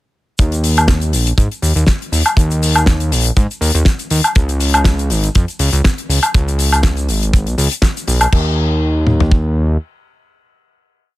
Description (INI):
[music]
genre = nu-disco, nu disco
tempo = 121 BPM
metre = 4/4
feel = swing 55% on 16ths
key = unclear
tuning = A4 = 440 Hz
[part]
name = fat analog bass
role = bass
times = 0.4-9.8 s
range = Ab1 to Ab2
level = -15 LUFS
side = equal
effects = sidechain pumping
[part]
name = damped 70s drum kit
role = drums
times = 0.4-9.4 s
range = kick drum, toms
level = -12 LUFS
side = equal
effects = none
[part]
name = damped 70s drum kit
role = drums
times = 0.4-8.4 s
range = crash cymbal, hi-hat, shaker, snare drum, woodblock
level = -17 LUFS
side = left 2 dB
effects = none
[sound]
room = little or no reverb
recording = none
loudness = -12 LUFS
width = side -17 dB against mid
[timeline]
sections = 0.4-8.3 drop; 8.3-11.2 final note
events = drop 0.4-8.3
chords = none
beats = | 0.39 0.89 1.38 1.88 | 2.37 2.87 3.36 3.86 | 4.36 4.85 5.35 5.84 | 6.34 6.83 7.33 7.83 | 8.32 8.82 9.31